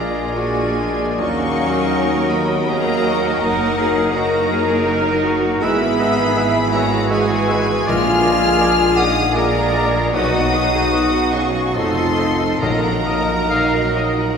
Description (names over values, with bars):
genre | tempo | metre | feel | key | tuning
classical, slow romantic movement for symphony orchestra | 66-84 BPM | 3/4 | rubato | Eb minor | A4 = 440 Hz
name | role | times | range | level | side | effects
rich chamber violin section | melody | 0.0-14.3 s | Gb5 to F6 | -25 LUFS | left 4 dB | none
clear oboe | second line | 0.0-14.1 s | D5 to E5 | -29 LUFS | left 2 dB | none
mellow large flute ensemble | second line | 0.0-14.3 s | Bb4 to Ab5 | -25 LUFS | equal | none
warm clarinet | second line | 0.0-14.4 s | A4 to F5 | -29 LUFS | left 3 dB | none
warm studio violin section | second line | 0.0-14.4 s | D4 to Gb5 | -27 LUFS | left 1 dB | none
warm bassoon | accompaniment | 0.0-14.1 s | F3 to G#3 | -29 LUFS | equal | none
warm studio viola section | accompaniment | 0.0-14.4 s | D3 to Gb4 | -26 LUFS | right 2 dB | none
mellow French horn section | sustained chords | 0.0-14.4 s | Gb3 to F4 | -24 LUFS | left 3 dB | none
mellow trombone section | sustained chords | 0.0-14.4 s | E3 to E4 | -26 LUFS | right 3 dB | none
mellow trumpet section | stabs | 0.0-14.4 s | F#4 to Bb4 | -24 LUFS | equal | none
rich chamber double bass section | bass | 0.0-14.4 s | F1 to Eb2 | -25 LUFS | right 2 dB | none
rich studio cello section | bass | 0.0-14.4 s | Eb4 to Bb4 | -25 LUFS | right 2 dB | none
timpani | percussion | 7.9-8.9, 12.6-13.9 s | Bb2 | -28 LUFS | left 2 dB | none
room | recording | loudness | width
wet church reverb, RT60 3.4 s | recorded in a church or concert hall | -15 LUFS | side -6 dB against mid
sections
0.0-14.4 A section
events
none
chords
0.0 Bb7; 1.2 Ebm; 3.4 Ebm/Gb; 5.6 E/G#; 7.9 Bb7; 10.2 B; 11.8 F7; 12.6 Ebm/Bb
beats
0.37 | 1.20 1.96 2.71 | 3.43 4.16 4.90 | 5.63 6.38 7.11 | 7.89 8.61 9.35 | 10.15 10.94 11.75 | 12.63 13.52